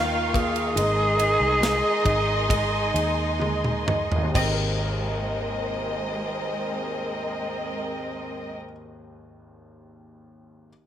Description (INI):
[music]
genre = pop ballad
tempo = 63-72 BPM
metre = 4/4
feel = straight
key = Ab major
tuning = A4 = 441 Hz
[part]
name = dark studio violin section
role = second line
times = 0.0-8.5 s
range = C4 to F5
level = -28 LUFS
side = right 1 dB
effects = none
[part]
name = warm concert grand piano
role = accompaniment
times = 0.0-10.7 s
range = Ab1 to Bb4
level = -31 LUFS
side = equal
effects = none
[part]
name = warm studio string section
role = sustained chords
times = 0.0-8.6 s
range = Ab3 to Db6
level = -32 LUFS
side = left 1 dB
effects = none
[part]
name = vintage muted fingered electric bass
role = bass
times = 0.0-8.5 s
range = Ab1 to Eb2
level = -29 LUFS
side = equal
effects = none
[part]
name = growling alto saxophone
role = melody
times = 0.3-3.4 s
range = Ab4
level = -24 LUFS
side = equal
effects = none
[part]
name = modern studio drum kit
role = drums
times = 0.3-4.6 s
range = crash cymbal, kick drum, ride cymbal, snare drum, toms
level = -29 LUFS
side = equal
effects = none
[sound]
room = light reverb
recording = none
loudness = -22 LUFS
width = side -10 dB against mid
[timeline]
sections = 0.0-4.3 A section; 4.3-8.2 B section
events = slowing down 0.0-4.3; drum fill 3.4-4.3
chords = 0.0 Eb7; 0.8 Abadd9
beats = | 0.77 1.62 2.50 3.41 | 4.35 5.31 6.26 7.22